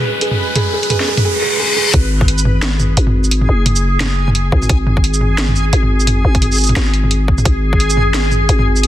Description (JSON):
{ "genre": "half-time drum and bass", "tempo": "174 BPM", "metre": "4/4", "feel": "swing 59% on 16ths, half-time", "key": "G# minor", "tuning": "A4 = 439 Hz", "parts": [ { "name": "dark analog pad", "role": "sustained chords", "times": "0.0-1.2 s", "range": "G#3 to D#5", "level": "-32 LUFS", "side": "left 1 dB", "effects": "none" }, { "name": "felt-muted upright piano", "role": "arpeggios", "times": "0.0-2.0 s", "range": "G#4", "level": "-20 LUFS", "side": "right 3 dB", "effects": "digital delay" }, { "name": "riser and reverse cymbal", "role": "sound effects", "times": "0.0-1.9 s", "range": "none", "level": "-18 LUFS", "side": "left 2 dB", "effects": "none" }, { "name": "backwards swelling texture", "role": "texture", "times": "0.0-8.9 s", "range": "G#4 to B4", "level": "-22 LUFS", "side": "equal", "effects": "built-in reverb" }, { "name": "drum and bass drum kit", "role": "drums", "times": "0.2-8.9 s", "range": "hi-hat, shaker, snare drum, toms", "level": "-18 LUFS", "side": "right 1 dB", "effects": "none" }, { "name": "growling 808-style bass", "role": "bass", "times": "1.9-8.9 s", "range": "F#1 to G#1", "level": "-14 LUFS", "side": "equal", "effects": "none" }, { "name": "electronic kick drum", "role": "drums", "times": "1.9-2.3, 4.5-7.8 s", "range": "none", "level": "-14 LUFS", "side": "equal", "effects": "none" } ], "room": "digital ambience", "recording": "dense, heavily limited modern master", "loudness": "-12 LUFS", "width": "side -13 dB against mid", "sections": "0.0-1.9 A section; 1.9-8.9 B section", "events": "build-up 0.0-1.9; riser 0.0-1.9; reverse cymbal 1.2-1.9; drop 1.9-8.9", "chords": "0.0 G#m; 1.9 G#5", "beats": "0.21 | 0.56 0.90 1.25 1.59 | 1.94 2.28 2.63 2.97 | 3.32 3.66 4.01 4.35 | 4.70 5.04 5.38 5.73 | 6.08 6.42 6.76 7.11 | 7.45 7.80 8.14 8.49 | 8.83" }